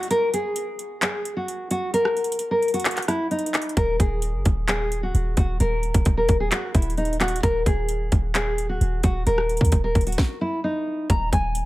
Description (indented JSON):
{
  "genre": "hip hop, trap",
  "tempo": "131 BPM",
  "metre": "4/4",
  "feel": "half-time",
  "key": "Eb phrygian",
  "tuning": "A4 = 439 Hz",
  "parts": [
    { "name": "nylon-string guitar", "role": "melody", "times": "0.0-11.7 s", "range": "Eb4 to Bb5", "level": "-24 LUFS", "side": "equal", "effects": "low-pass filter, tape echo" },
    { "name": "trap drum kit", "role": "drums", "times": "0.0-11.7 s", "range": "handclaps, hi-hat, kick drum, rim click, snare drum", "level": "-23 LUFS", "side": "equal", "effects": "overdrive" },
    { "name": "clean 808-style bass", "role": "bass", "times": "3.8-11.7 s", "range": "Eb1 to Eb2", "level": "-24 LUFS", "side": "equal", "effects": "none" }
  ],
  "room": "light reverb",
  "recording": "none",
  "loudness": "-20 LUFS",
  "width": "side -17 dB against mid",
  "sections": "0.0-11.1 A section",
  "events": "break 0.0-3.8; stop 10.2-11.1",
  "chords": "0.0 N.C.; 3.8 Ebm; 7.4 Eb5"
}